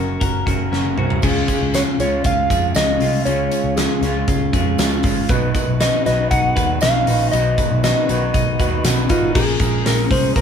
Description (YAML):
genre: jangly indie pop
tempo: 118 BPM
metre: 4/4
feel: straight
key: unclear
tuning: A4 = 440 Hz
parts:
  - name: mellow electric guitar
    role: melody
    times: 0.0-10.4 s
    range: F4 to F#5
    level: -21 LUFS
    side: equal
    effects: vibrato effect
  - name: clear upright piano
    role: accompaniment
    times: 0.0-10.4 s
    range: Db4 to C5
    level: -26 LUFS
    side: right 1 dB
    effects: none
  - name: electric guitar through a small old amp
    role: accompaniment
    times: 0.0-9.4 s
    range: B2 to Gb4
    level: -26 LUFS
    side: right 3 dB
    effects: none
  - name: twelve-string electric guitar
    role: arpeggios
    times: 0.0-10.4 s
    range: Bb2 to B4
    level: -25 LUFS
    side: left 4 dB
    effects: none
  - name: vintage muted picked electric bass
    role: bass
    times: 0.0-10.4 s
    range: Gb1 to F2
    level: -22 LUFS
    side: equal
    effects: none
  - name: big rock drum kit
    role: drums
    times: 0.2-10.4 s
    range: crash cymbal, hi-hat, kick drum, snare drum, toms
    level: -20 LUFS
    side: equal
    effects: none
  - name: tambourine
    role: percussion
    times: 1.2-10.4 s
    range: none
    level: -35 LUFS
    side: right 4 dB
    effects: none
  - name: mellow brass ensemble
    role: sustained chords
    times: 5.3-10.4 s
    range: Db3 to Ab4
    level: -33 LUFS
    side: right 2 dB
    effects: none
room: moderate studio reverb, RT60 0.8 s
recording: band playing live in one room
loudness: -15 LUFS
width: side -7 dB against mid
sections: 0.0-1.2 A section; 1.2-9.3 B section; 9.3-10.4 C section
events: drum fill 0.7-1.2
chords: 0.0 Gb; 1.2 Db; 5.3 B; 9.3 Bbm7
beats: 0.21 0.72 | 1.23 1.74 2.25 2.76 | 3.27 3.77 4.28 4.79 | 5.30 5.80 6.31 6.82 | 7.33 7.83 8.34 8.84 | 9.35 9.85 10.36